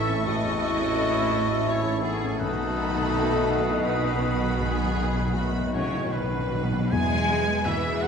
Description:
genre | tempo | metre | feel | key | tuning
cinematic, emotional film score for orchestra | 74-85 BPM | 3/4 | rubato | unclear | A4 = 440 Hz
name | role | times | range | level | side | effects
clear symphonic violin section | melody | 0.0-8.1 s | B4 to C#6 | -34 LUFS | left 3 dB | none
clear clarinet | second line | 0.0-6.5 s | A3 to A4 | -33 LUFS | equal | none
small flute group | second line | 0.0-8.1 s | B4 to E6 | -34 LUFS | left 4 dB | none
warm oboe | second line | 0.0-8.1 s | B4 to A5 | -36 LUFS | right 2 dB | none
warm symphonic violin section | second line | 0.0-8.1 s | B3 to E5 | -33 LUFS | left 1 dB | none
felt-muted upright piano | accompaniment | 0.0-8.1 s | E1 to A4 | -32 LUFS | left 2 dB | none
rich studio viola section | accompaniment | 0.0-8.1 s | D#3 to B4 | -36 LUFS | right 1 dB | none
warm French horn section | sustained chords | 0.0-8.1 s | F#3 to G#4 | -31 LUFS | left 1 dB | none
concert harp | arpeggios | 0.0-8.1 s | E2 to B5 | -34 LUFS | left 7 dB | none
clear symphonic cello section | bass | 0.0-8.1 s | A2 to G#3 | -31 LUFS | right 3 dB | none
rich symphonic double bass section | bass | 0.0-8.1 s | A1 to E2 | -31 LUFS | right 4 dB | none
timpani | percussion | 2.4-8.0 s | E2 to B2 | -31 LUFS | left 1 dB | none
room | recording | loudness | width
wet scoring stage reverb, RT60 1.5 s | dark, warm production | -22 LUFS | side -6 dB against mid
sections
0.0-6.9 A section; 6.9-8.1 B section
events
timpani fill 2.4-6.9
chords
0.0 A; 2.4 B7; 6.9 E

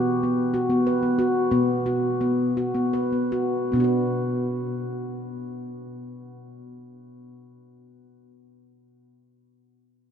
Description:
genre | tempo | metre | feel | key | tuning
world meditative, meditative tuned percussion | 48-64 BPM (dotted quarters) | 6/8 | straight | B hirajoshi | A4 = 440 Hz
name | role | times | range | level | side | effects
handpan | solo | 0.0-8.7 s | B2 to B4 | -23 LUFS | equal | none
room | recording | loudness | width
wet cathedral reverb, RT60 6.7 s | in a vast, echoing space | -22 LUFS | side -8 dB against mid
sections
0.0-3.7 A section; 3.7-8.7 B section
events
slowing down 0.0-3.7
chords
0.0 B5; 3.7 Bm

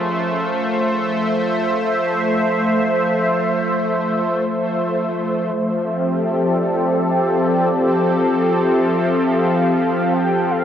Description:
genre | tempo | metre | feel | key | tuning
ambient | free time | none | none | F major | A4 = 440 Hz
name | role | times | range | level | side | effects
warm analog pad | sustained chords | 0.0-10.6 s | F3 to E5 | -17 LUFS | equal | chorus
overtone-sweeping drone | drone | 0.0-10.6 s | F3 to F4 | -26 LUFS | right 2 dB | chorus, built-in reverb
warm velvety synth lead | melody | 5.5-10.6 s | C5 to G5 | -26 LUFS | equal | chorus, tape echo
room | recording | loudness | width
wet huge ambient reverb, RT60 7.7 s | worn, warbling old tape, cassette tape, warbly pitch drift | -16 LUFS | side -9 dB against mid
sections
0.0-5.6 A section; 5.6-10.6 B section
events
fade-in on soft synth lead 5.6-10.6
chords
0.0 Am; 5.6 Fmaj7

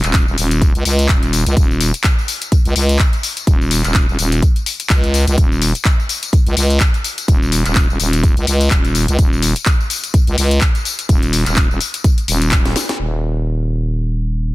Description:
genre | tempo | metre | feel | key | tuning
bass house | 126 BPM | 4/4 | swing 57% on 16ths | unclear | A4 = 438 Hz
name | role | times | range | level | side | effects
growling FM bass | bass | 0.0-14.5 s | Eb1 to Db2 | -16 LUFS | equal | tube saturation, sidechain pumping
house drum kit | drums | 0.0-13.0 s | handclaps, hi-hat, snare drum, tambourine | -19 LUFS | left 2 dB | low-pass filter on hats, low-pass filter on perc, low-pass filter on snare, low-pass filter on room
electronic kick drum | drums | 0.1-12.6 s | none | -13 LUFS | equal | none
room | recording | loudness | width
little or no reverb | dense, heavily limited modern master | -13 LUFS | side -19 dB against mid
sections
0.0-13.0 A section; 13.0-14.5 B section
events
drop 0.0-13.0; drum fill 12.6-13.0; filter sweep on drum 13.0-14.5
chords
none

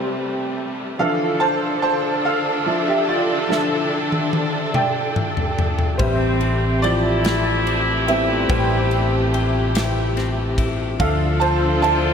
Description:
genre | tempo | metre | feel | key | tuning
six-eight pop ballad | 48 BPM (dotted quarters) | 6/8 | straight | A minor | A4 = 440 Hz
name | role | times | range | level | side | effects
clear concert grand piano | accompaniment | 0.0-12.1 s | E3 to A5 | -21 LUFS | right 1 dB | ensemble chorus
rich studio string section | sustained chords | 0.0-12.1 s | C3 to A4 | -25 LUFS | left 1 dB | none
modern studio drum kit | drums | 3.5-12.0 s | kick drum, ride cymbal, snare drum, toms | -25 LUFS | left 1 dB | none
muted French horn section | second line | 6.0-12.1 s | C4 to F4 | -25 LUFS | left 2 dB | none
direct-recorded clean electric guitar | arpeggios | 6.0-12.1 s | F3 to G4 | -28 LUFS | left 7 dB | ping-pong delay
mellow fretless electric bass | bass | 6.0-12.1 s | A1 to D2 | -22 LUFS | equal | none
room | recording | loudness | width
moderate plate reverb, RT60 3.6 s | dreamy mix soaked in reverb | -17 LUFS | side -7 dB against mid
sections
0.0-12.1 A section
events
grand piano solo 0.0-12.1; drum fill 3.5-6.0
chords
0.0 Am7; 1.0 Dmadd9; 6.0 Am7; 11.0 Dmadd9

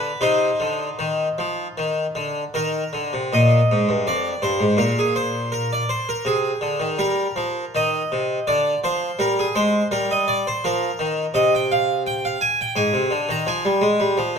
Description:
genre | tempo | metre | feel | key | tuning
classical, baroque-style suite movement for harpsichord | 74-86 BPM | 3/4 | rubato | Eb major | A4 = 440 Hz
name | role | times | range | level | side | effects
harpsichord | solo | 0.0-14.4 s | F2 to Bb5 | -19 LUFS | equal | none
room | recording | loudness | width
moderate recital hall reverb, RT60 1.4 s | close, detailed microphones | -19 LUFS | side -6 dB against mid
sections
0.0-2.5 A section; 2.5-14.4 A section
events
none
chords
0.2 Cm; 2.5 Eb5; 4.1 Fm; 4.8 Bb7; 7.0 Eb; 8.5 Dm7; 9.2 Eb/G; 11.3 N.C.; 12.7 Ab; 13.5 Ddim/F (rootless)

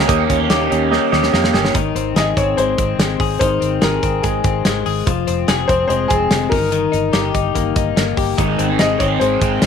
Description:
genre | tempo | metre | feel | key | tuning
jangly indie pop | 145 BPM | 4/4 | straight | Ab major | A4 = 440 Hz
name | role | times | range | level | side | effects
overdriven semi-hollow guitar | accompaniment | 0.0-1.8, 8.4-9.7 s | Ab2 to Ab4 | -21 LUFS | right 14 dB | phaser
reed electric piano | accompaniment | 0.0-1.8 s | G4 to Bb5 | -20 LUFS | right 13 dB | none
twelve-string electric guitar | arpeggios | 0.0-9.7 s | Eb3 to Ab4 | -19 LUFS | left 12 dB | none
fingered electric bass | bass | 0.0-9.7 s | F1 to F2 | -22 LUFS | right 2 dB | none
modern studio drum kit | drums | 0.1-9.7 s | hi-hat, kick drum, snare drum | -19 LUFS | right 1 dB | none
warm upright piano | melody | 2.2-9.7 s | Ab4 to Eb5 | -19 LUFS | left 2 dB | none
room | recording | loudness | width
moderate spring reverb, RT60 1.3 s, small room reverb | 1960s-style stereo with parts hard left and right | -14 LUFS | side -7 dB against mid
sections
0.1-1.8 A section; 1.8-9.7 B section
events
drum fill 0.9-1.8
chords
0.1 Eb7; 1.8 Ab; 5.1 Fm; 6.5 Eb/G; 8.4 Ab

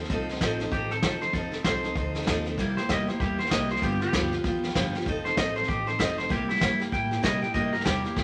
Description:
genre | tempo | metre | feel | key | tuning
rockabilly | 193 BPM | 4/4 | swing 61% on 8ths | unclear | A4 = 440 Hz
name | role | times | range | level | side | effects
electric guitar through a small old amp | melody | 0.0-8.2 s | E4 to G5 | -32 LUFS | equal | none
picked steel-string acoustic guitar | accompaniment | 0.0-8.2 s | G2 to A4 | -32 LUFS | equal | none
upright bass | bass | 0.0-8.2 s | F1 to Bb2 | -37 LUFS | equal | none
vintage brush drum kit | drums | 0.0-8.2 s | hi-hat, kick drum, snare drum | -32 LUFS | equal | none
room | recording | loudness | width
wet large studio reverb, RT60 0.9 s | none | -27 LUFS | mono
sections
0.0-8.2 A section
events
clean electric guitar solo 0.0-8.2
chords
0.0 F7; 2.6 C7; 3.8 G7; 5.1 F7; 6.3 C7

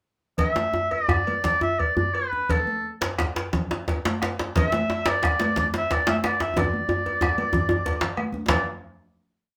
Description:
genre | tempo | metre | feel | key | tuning
west african traditional, West African drum ensemble | 113-131 BPM (dotted quarters) | 12/8 | straight | unclear | A4 = 439 Hz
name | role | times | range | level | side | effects
clear oboe | melody | 0.4-8.6 s | A4 to E5 | -27 LUFS | equal | none
bombo | percussion | 0.4-8.6 s | none | -30 LUFS | equal | none
congas | percussion | 0.4-8.6 s | none | -33 LUFS | equal | none
cowbell | percussion | 0.4-8.6 s | none | -37 LUFS | equal | none
djembe | percussion | 0.4-8.6 s | none | -36 LUFS | equal | none
djembe | percussion | 0.6-8.6 s | none | -29 LUFS | equal | none
room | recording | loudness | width
moderate studio reverb, RT60 0.6 s | none | -24 LUFS | mono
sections
0.4-8.5 A section; 8.5-9.6 final note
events
speeding up 0.4-9.6; drum fill 6.6-8.5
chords
none

